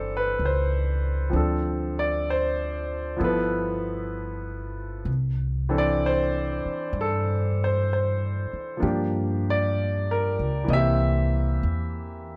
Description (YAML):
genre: jazz ballad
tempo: 64 BPM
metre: 4/4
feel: swing 69% on 8ths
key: C major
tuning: A4 = 440 Hz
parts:
  - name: clear concert grand piano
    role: accompaniment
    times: 0.0-12.4 s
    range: E3 to E5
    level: -28 LUFS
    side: equal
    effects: none
  - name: upright bass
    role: bass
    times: 0.0-12.4 s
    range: G1 to G2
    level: -29 LUFS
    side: equal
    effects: none
room: little or no reverb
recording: close, detailed microphones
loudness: -25 LUFS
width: mono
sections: 0.0-5.1 A section; 5.1-12.4 A section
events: none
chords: 0.0 C69; 1.3 Dm7; 3.2 G13; 5.1 C69; 8.8 Gm7; 10.7 C7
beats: 0.39 | 1.32 2.26 3.19 4.13 | 5.07 6.01 6.95 7.89 | 8.82 9.76 10.69 11.62